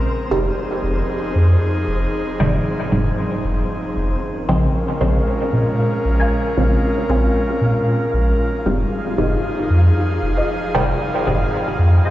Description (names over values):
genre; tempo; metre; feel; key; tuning
dub techno; 115 BPM; 4/4; swing 56% on 16ths; unclear; A4 = 440 Hz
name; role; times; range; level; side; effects
airy breathy pad; sustained chords; 0.0-12.1 s; F3 to Bb4; -23 LUFS; equal; chorus
flickering grainy texture; texture; 0.0-12.1 s; C4 to F5; -29 LUFS; equal; built-in reverb
filtered dub chord stab; stabs; 0.3-11.4 s; Ab2 to C4; -22 LUFS; equal; phaser, dub echo
warm sub bass; bass; 0.3-12.0 s; F1 to Bb2; -18 LUFS; equal; none
filtered dub chord stab; riff; 5.0-12.1 s; F4 to Ab5; -30 LUFS; left 1 dB; none
room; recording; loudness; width
moderate huge ambient reverb, RT60 7.5 s; played on a big sound system in a bare room, large studio reverb, nothing above 7.8 kHz; -16 LUFS; side -14 dB against mid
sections
0.0-12.1 A section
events
none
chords
0.1 Fm7; 4.2 Bbm7; 8.4 Fm7